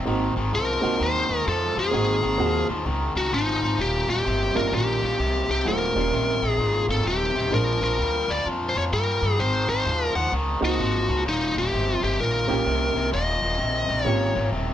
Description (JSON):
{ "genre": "electric blues shuffle", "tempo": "129 BPM", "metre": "4/4", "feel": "swing 64% on 8ths", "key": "Eb mixolydian", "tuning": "A4 = 440 Hz", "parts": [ { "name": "biting overdriven guitar", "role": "riff", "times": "0.0-14.7 s", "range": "Eb2 to G3", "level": "-28 LUFS", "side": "left 1 dB", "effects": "none" }, { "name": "upright bass", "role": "bass", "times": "0.0-14.7 s", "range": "Eb1 to G2", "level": "-27 LUFS", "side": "equal", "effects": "none" }, { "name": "warm upright piano", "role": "accompaniment", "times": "0.1-14.3 s", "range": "Gb3 to G4", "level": "-28 LUFS", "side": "right 5 dB", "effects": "none" }, { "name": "biting lead guitar", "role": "melody", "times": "0.6-14.5 s", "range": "Eb4 to Gb5", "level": "-24 LUFS", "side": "left 1 dB", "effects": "overdrive" } ], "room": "light reverb", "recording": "none", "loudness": "-21 LUFS", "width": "side -11 dB against mid", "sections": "0.0-14.7 A section", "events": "none", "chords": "0.1 Ab7; 3.8 Eb7; 7.5 Bb7; 9.4 Ab7; 11.3 Eb7" }